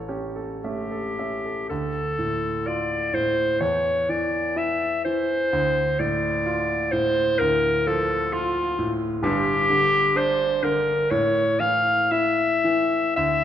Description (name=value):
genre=classical, romantic duo for clarinet and grand piano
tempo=63 BPM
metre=4/4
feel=uneven beats, rubato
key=D minor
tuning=A4 = 441 Hz
part: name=clear concert grand piano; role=accompaniment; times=0.0-13.4 s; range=G1 to E5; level=-26 LUFS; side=equal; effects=none
part: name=breathy clarinet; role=melody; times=0.6-13.4 s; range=F4 to F5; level=-22 LUFS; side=left 1 dB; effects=none
room=wet scoring stage reverb, RT60 1.9 s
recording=none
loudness=-20 LUFS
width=side -10 dB against mid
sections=0.0-1.7 A section; 1.7-13.4 B section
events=none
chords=0.0 A; 1.7 Dm; 3.6 N.C.; 5.5 Dm; 9.2 G5; 11.1 A5